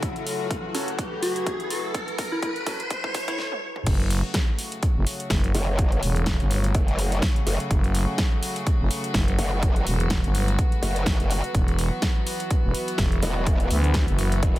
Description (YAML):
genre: bass house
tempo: 125 BPM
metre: 4/4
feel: swing 56% on 16ths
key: F# minor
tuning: A4 = 440 Hz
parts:
  - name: rich chamber string section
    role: sustained chords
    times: 0.0-14.6 s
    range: C#3 to F#4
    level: -33 LUFS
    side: left 1 dB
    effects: sidechain pumping
  - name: big-room dance drum kit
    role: drums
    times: 0.0-14.6 s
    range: crash cymbal, hi-hat, snare drum, toms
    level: -30 LUFS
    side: equal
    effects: none
  - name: electronic kick drum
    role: drums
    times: 0.0-14.5 s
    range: none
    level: -24 LUFS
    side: equal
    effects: none
  - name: riser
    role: sound effects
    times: 0.0-3.4 s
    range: none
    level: -32 LUFS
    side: equal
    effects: none
  - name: warbly tape-like pad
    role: texture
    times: 0.0-14.6 s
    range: F#3 to E5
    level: -35 LUFS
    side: equal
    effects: chorus, built-in reverb, sidechain pumping
  - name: dark grand piano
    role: stabs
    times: 0.7-2.8 s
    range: F#3 to A4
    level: -34 LUFS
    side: right 2 dB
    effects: sidechain pumping, tape echo
  - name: soft struck synth lead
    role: melody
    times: 1.2-3.4 s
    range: E4 to F#4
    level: -32 LUFS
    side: left 1 dB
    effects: chorus, tape echo
  - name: growling FM bass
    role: bass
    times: 3.9-14.4 s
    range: E1 to D2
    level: -22 LUFS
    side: equal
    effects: overdrive, sidechain pumping
  - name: growl bass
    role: bass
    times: 5.5-14.6 s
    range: E1 to A1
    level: -24 LUFS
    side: equal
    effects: chorus, tube saturation, sidechain pumping
room: little or no reverb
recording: high-pass filter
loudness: -21 LUFS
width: side -16 dB against mid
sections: 0.0-3.9 A section; 3.9-14.6 B section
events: build-up 0.0-3.9; riser 0.0-3.4; filter sweep 0.0-3.9; drum fill 0.0-3.4, 3.4-3.9; stop 3.4-3.9; drop 3.9-14.6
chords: 0.0 F#m; 11.5 Esus2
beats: | 0.03 0.51 0.99 1.47 | 1.95 2.43 2.91 3.39 | 3.87 4.35 4.83 5.31 | 5.79 6.27 6.75 7.23 | 7.71 8.19 8.67 9.15 | 9.63 10.11 10.59 11.07 | 11.55 12.03 12.51 12.99 | 13.47 13.95 14.43